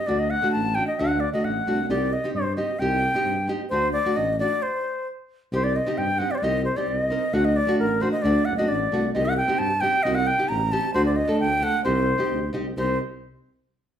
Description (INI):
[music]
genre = klezmer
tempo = 133 BPM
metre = 2/4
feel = straight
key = C dorian sharp4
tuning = A4 = 438 Hz
[part]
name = reedy concert flute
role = melody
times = 0.0-13.0 s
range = Bb4 to Bb5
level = -24 LUFS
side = left 1 dB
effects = none
[part]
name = nylon-string guitar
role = accompaniment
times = 0.1-13.0 s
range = A3 to Bb4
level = -26 LUFS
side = right 1 dB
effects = none
[part]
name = dark tuba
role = bass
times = 0.1-13.0 s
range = F#1 to G2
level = -27 LUFS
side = equal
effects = none
[sound]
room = wet large studio reverb, RT60 0.9 s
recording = band playing live in one room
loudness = -21 LUFS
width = side -9 dB against mid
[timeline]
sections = 0.0-5.5 A section; 5.5-12.8 A section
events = stop 4.6-5.5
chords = 0.1 D; 1.9 Cm; 3.7 D; 4.6 N.C.; 5.5 Cm; 7.3 D; 9.2 Cm; 11.0 D; 11.9 Cm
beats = | 0.08 0.54 | 0.99 1.45 | 1.90 2.36 | 2.81 3.26 | 3.72 4.17 | 4.62 5.08 | 5.53 5.98 | 6.44 6.89 | 7.34 7.79 | 8.25 8.70 | 9.15 9.61 | 10.06 10.51 | 10.96 11.41 | 11.87 12.32 | 12.77